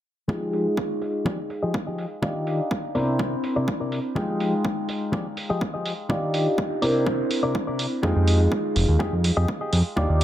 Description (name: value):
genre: filtered disco house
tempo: 124 BPM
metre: 4/4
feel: straight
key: F dorian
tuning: A4 = 440 Hz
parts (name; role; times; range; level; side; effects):
- bright concert grand piano; accompaniment; 0.3-10.2 s; Ab3 to G5; -26 LUFS; equal; phaser, sidechain pumping, low-pass filter, analog delay
- direct-recorded clean electric guitar; riff; 0.3-10.2 s; C3 to Eb5; -28 LUFS; left 2 dB; sidechain pumping, low-pass filter
- electronic kick drum; drums; 0.3-10.1 s; none; -29 LUFS; equal; overdrive, high-pass filter on kick, high-pass filter on room
- electronic hi-hat; drums; 0.5-10.2 s; none; -32 LUFS; right 3 dB; sidechain pumping on hats, low-pass filter on hats
- fat analog bass; bass; 8.0-10.2 s; F1 to F2; -20 LUFS; equal; tube saturation, sidechain pumping, low-pass filter
room: light reverb, digital ambience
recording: echo-heavy mix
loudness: -22 LUFS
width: side -12 dB against mid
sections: 0.3-10.2 A section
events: filter sweep on drum 0.3-10.2; filter sweep 0.3-10.2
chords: 0.3 Fm9; 2.2 Ebmaj9; 3.0 C9; 4.2 Fm9; 6.1 Ebmaj9; 6.8 C9; 8.0 Fm9